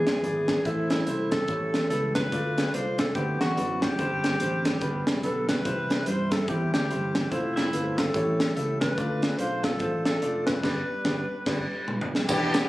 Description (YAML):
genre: uptempo gospel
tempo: 144 BPM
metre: 4/4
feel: swing 60% on 8ths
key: unclear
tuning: A4 = 440 Hz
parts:
  - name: breathy alto saxophone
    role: melody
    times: 0.0-12.1 s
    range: E4 to C5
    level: -29 LUFS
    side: equal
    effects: none
  - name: clear upright piano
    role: accompaniment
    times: 0.0-12.7 s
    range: G2 to F5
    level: -32 LUFS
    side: left 1 dB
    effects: none
  - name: mellow tonewheel organ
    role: sustained chords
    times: 0.0-12.7 s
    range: D3 to B5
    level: -36 LUFS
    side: right 2 dB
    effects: none
  - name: warm French horn section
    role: sustained chords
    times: 0.0-12.3 s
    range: C3 to E5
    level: -40 LUFS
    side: right 1 dB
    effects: none
  - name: fingered electric bass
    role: bass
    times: 0.0-12.6 s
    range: E1 to G2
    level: -32 LUFS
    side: equal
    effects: none
  - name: crisp fusion drum kit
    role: drums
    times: 0.1-12.6 s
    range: crash cymbal, hi-hat, kick drum, snare drum, toms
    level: -28 LUFS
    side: equal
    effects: none
  - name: warm studio string section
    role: melody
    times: 12.3-12.7 s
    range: B3 to G4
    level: -25 LUFS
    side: equal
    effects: none
  - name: tambourine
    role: percussion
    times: 12.3-12.6 s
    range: none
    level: -36 LUFS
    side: right 2 dB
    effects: none
room: light reverb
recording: recorded on a phone in the room, club reverb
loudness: -24 LUFS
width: side -17 dB against mid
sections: 0.0-12.3 A section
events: band accent 10.6-12.3; drum fill 11.5-12.3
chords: 0.0 E7; 0.7 Am; 1.5 A7; 2.3 Dm; 3.2 D13; 4.0 Gsus4; 4.8 G; 5.7 C; 7.3 F; 8.1 A7; 9.0 Dm; 10.6 G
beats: 0.24 | 0.66 1.07 1.49 1.91 | 2.32 2.74 3.16 3.57 | 3.99 4.41 4.82 5.24 | 5.65 6.07 6.48 6.90 | 7.32 7.73 8.15 8.56 | 8.98 9.39 9.81 10.22 | 10.64 11.05 11.47 11.88 | 12.29